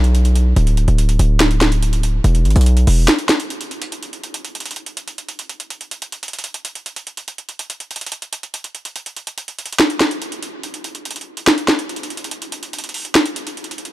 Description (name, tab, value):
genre	hip hop, trap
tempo	143 BPM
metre	4/4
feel	half-time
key	unclear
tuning	A4 = 440 Hz
part	distorted 808-style bass	bass	0.0-3.1 s	D1 to B1	-13 LUFS	equal	distortion
part	trap drum kit	drums	0.0-13.9 s	hi-hat, snare drum	-19 LUFS	equal	none
room	little or no reverb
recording	dark, warm production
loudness	-16 LUFS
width	side -17 dB against mid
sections	0.0-3.9 A section; 3.9-10.6 B section; 10.6-13.9 C section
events	break 3.1-3.9; kick muted 10.6-13.9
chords	none